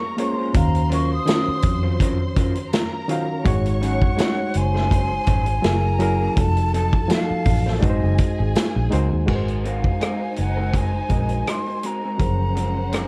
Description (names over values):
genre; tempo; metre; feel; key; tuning
lush 1970s-style soul; 82 BPM; 4/4; swing 54% on 16ths; unclear; A4 = 440 Hz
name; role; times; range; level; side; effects
breathy hollow jazz flute; melody; 0.0-13.1 s; D5 to Eb6; -30 LUFS; equal; none
warm symphonic violin section; second line; 0.0-13.1 s; Db4 to Db6; -35 LUFS; equal; none
barky reed electric piano; accompaniment; 0.0-13.1 s; Eb3 to F5; -28 LUFS; equal; overdrive
electric guitar through a small old amp; riff; 0.0-13.1 s; Fb3 to C5; -34 LUFS; equal; lush chorus
vintage drum kit; drums; 0.2-13.1 s; crash cymbal, hi-hat, kick drum, rim click, snare drum; -25 LUFS; equal; none
vintage muted fingered electric bass; bass; 0.5-13.1 s; F1 to F2; -25 LUFS; equal; none
tambourine; percussion; 1.3-8.7 s; none; -45 LUFS; equal; none
room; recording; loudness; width
studio reverb; dark, warm production; -21 LUFS; mono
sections
0.0-9.3 A section; 9.3-13.1 B section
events
none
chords
0.0 Bbm9; 0.5 Ebm9; 3.5 Ab7sus4; 5.6 Gb9; 6.4 F7b9; 7.8 Ab7; 9.3 Ab9; 12.2 Gbmaj9#11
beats
| 0.55 1.27 2.00 2.73 | 3.46 4.18 4.91 5.64 | 6.37 7.09 7.82 8.55 | 9.28 10.01 10.74 11.46 | 12.19 12.92